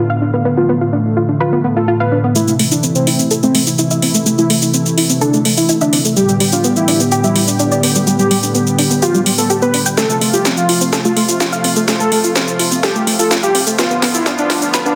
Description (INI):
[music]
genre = melodic techno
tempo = 126 BPM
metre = 4/4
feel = straight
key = A minor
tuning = A4 = 440 Hz
[part]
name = warm analog pad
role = sustained chords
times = 0.0-15.0 s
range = A2 to F5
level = -20 LUFS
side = equal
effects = chorus
[part]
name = soft round pluck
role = arpeggios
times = 0.0-14.9 s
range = G3 to G5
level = -19 LUFS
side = equal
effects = chorus, dub echo
[part]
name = analog drone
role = drone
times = 0.5-2.4 s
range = A2 to E3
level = -30 LUFS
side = equal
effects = none
[part]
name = unison lead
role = melody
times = 0.6-15.0 s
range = C4 to B4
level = -20 LUFS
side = equal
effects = digital delay
[part]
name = house drum kit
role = drums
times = 2.4-15.0 s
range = hi-hat, shaker, snare drum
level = -19 LUFS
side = equal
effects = high-pass filter on perc, small room ambience, high-pass filter on hats, high-pass filter on snare
[sound]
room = moderate digital room reverb, RT60 1.2 s, digital ambience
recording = dense, heavily limited modern master, high-pass filter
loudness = -14 LUFS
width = mono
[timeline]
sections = 0.0-2.4 A section; 2.4-15.0 B section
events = filter sweep on synth arpeggio sound 0.0-2.4, 2.4-15.0; filter sweep on analog synth lead 0.0-2.4; build-up 2.4-15.0; drum fill 10.0-15.0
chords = 0.0 Bdim/A; 2.4 Am; 6.2 G/A; 10.0 F; 13.8 Bdim/A